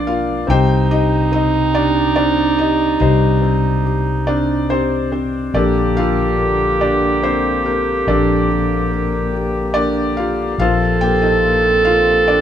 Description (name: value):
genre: acoustic folk-pop ballad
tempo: 71 BPM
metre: 3/4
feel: straight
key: unclear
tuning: A4 = 441 Hz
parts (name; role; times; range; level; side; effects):
- felt-muted upright piano; melody; 0.0-12.4 s; F3 to G5; -18 LUFS; left 1 dB; none
- warm clarinet; second line; 0.0-12.4 s; Eb4 to A4; -18 LUFS; right 4 dB; none
- fretless electric bass; bass; 0.0-12.4 s; Bb1 to C2; -19 LUFS; left 2 dB; none
- pedal harmonium; sustained chords; 5.5-12.4 s; C3 to G4; -24 LUFS; left 4 dB; none
room: moderate large studio reverb, RT60 1.2 s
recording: minimal, uncompressed stereo recording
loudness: -14 LUFS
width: side -10 dB against mid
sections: 0.0-12.4 A section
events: none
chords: 0.5 Cm; 5.5 Gmadd9/Bb; 10.6 F/Bb